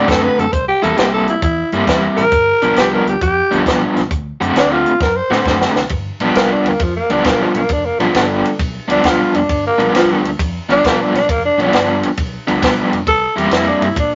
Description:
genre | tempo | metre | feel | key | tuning
electric blues shuffle | 134 BPM | 4/4 | swing 67% on 8ths | G mixolydian | A4 = 440 Hz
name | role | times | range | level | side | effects
growling tenor saxophone | melody | 0.0-14.2 s | D3 to D5 | -18 LUFS | equal | none
crunchy overdriven guitar | riff | 0.0-13.9 s | G2 to F#4 | -18 LUFS | equal | tremolo
vintage muted fingered electric bass | bass | 0.0-14.1 s | F1 to Bb2 | -29 LUFS | equal | none
compact cocktail drum kit | drums | 0.1-14.1 s | hi-hat, kick drum, ride cymbal, snare drum | -21 LUFS | equal | none
room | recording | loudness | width
moderate studio reverb, RT60 0.6 s | nothing above 7.5 kHz | -15 LUFS | mono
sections
0.0-5.9 A section; 5.9-14.2 A section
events
tenor saxophone solo 0.0-5.9, 5.9-14.2; drum fill 5.0-5.9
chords
0.0 D7; 0.5 C7; 2.3 G7; 4.1 D7; 5.9 G7; 13.1 C7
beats
0.07 | 0.52 0.97 1.42 1.87 | 2.32 2.77 3.21 3.66 | 4.11 4.56 5.01 5.46 | 5.90 6.35 6.80 7.25 | 7.70 8.14 8.59 9.04 | 9.49 9.94 10.38 10.83 | 11.28 11.73 12.18 12.62 | 13.07 13.52 13.97

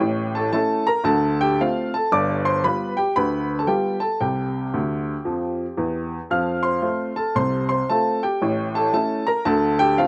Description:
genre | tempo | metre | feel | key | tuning
jazz, stride piano | 114 BPM | 4/4 | swing 65% on 8ths | F major | A4 = 440 Hz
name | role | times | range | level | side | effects
clear upright piano | solo | 0.0-10.1 s | G1 to F6 | -22 LUFS | equal | none
room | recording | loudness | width
little or no reverb | recorded outdoors, with no room sound | -22 LUFS | mono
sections
0.0-10.1 A section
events
upright piano fill 4.7-6.3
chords
0.0 A7; 1.1 Dm7; 2.1 G7; 4.2 C; 6.3 F; 8.4 A7; 9.4 Dm7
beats
| 0.01 0.53 1.06 1.58 | 2.11 2.63 3.16 3.68 | 4.21 4.73 5.25 5.78 | 6.30 6.83 7.35 7.88 | 8.40 8.93 9.45 9.97

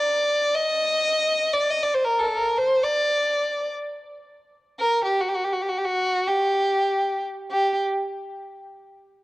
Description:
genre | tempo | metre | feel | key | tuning
Arabic maqam ensemble | free time | none | none | G maqam nahawand | A4 = 440 Hz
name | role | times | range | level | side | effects
warm violin | solo | 0.0-7.8 s | F#4 to Eb5 | -21 LUFS | equal | cassette tape
room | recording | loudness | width
moderate spring reverb, RT60 2.8 s | home recording on cassette | -20 LUFS | side -18 dB against mid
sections
0.0-7.5 A section; 7.5-9.2 B section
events
none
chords
none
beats
free time

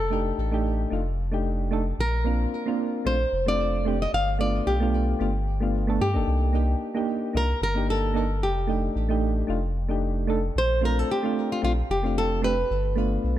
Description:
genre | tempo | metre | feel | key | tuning
sunset chillout | 112 BPM | 4/4 | swing 55% on 16ths | unclear | A4 = 442 Hz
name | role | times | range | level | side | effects
flamenco guitar | melody | 0.0-13.4 s | F4 to F5 | -28 LUFS | equal | digital delay
warm sub bass | bass | 0.0-13.4 s | F1 to G2 | -26 LUFS | equal | none
soft electric-piano-like synth keys | accompaniment | 0.1-13.4 s | A3 to A4 | -28 LUFS | moving between left 4 dB and right 4 dB | chorus, auto-pan, vintage 12-bit sampler grit, tape echo
room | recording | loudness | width
light reverb, small room ambience | dark, warm production | -22 LUFS | side -12 dB against mid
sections
0.0-13.4 A section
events
none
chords
0.0 F13; 2.0 Bbmaj7; 4.1 G7; 6.3 Cm7; 8.4 F13; 10.6 Bbmaj7; 12.7 G7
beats
0.38 0.92 1.45 | 1.99 2.52 3.06 3.60 | 4.13 4.67 5.20 5.74 | 6.27 6.81 7.34 7.88 | 8.42 8.95 9.49 10.02 | 10.56 11.10 11.63 12.17 | 12.70 13.24

